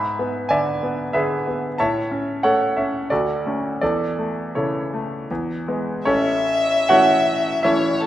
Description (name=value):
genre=classical, romantic duo for violin and grand piano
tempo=69-94 BPM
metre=3/4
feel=rubato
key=A major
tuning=A4 = 443 Hz
part: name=bright grand piano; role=accompaniment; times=0.0-8.1 s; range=A1 to B5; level=-19 LUFS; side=right 1 dB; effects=none
part: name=clear violin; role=melody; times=6.1-8.1 s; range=A4 to E5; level=-20 LUFS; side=left 3 dB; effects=none
room=moderate recital hall reverb, RT60 1.3 s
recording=lossy compression artefacts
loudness=-18 LUFS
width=side -13 dB against mid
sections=0.0-6.1 A section; 6.1-8.1 B section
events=none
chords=0.0 E7/G#; 1.8 A; 3.1 Dmaj7; 3.8 A/E; 5.3 E; 6.1 A